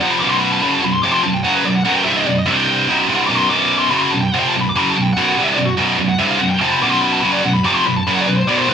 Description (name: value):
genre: metal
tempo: 145 BPM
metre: 4/4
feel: straight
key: B phrygian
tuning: A4 = 441 Hz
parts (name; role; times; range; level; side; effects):
- high-gain lead guitar; melody; 0.0-8.7 s; F#4 to D6; -19 LUFS; left 2 dB; distortion
- heavy high-gain guitar; riff; 0.0-8.7 s; B1 to F#3; -14 LUFS; right 1 dB; distortion
room: light reverb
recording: rough home demo mix, small room ambience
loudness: -13 LUFS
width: side -7 dB against mid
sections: 0.0-8.7 A section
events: lead electric guitar solo 0.0-8.7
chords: 0.0 B5; 2.5 C5; 2.9 B5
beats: | 0.21 0.62 1.03 1.45 | 1.86 2.27 2.68 3.09 | 3.51 3.92 4.33 4.74 | 5.16 5.57 5.98 6.40 | 6.81 7.23 7.64 8.06 | 8.47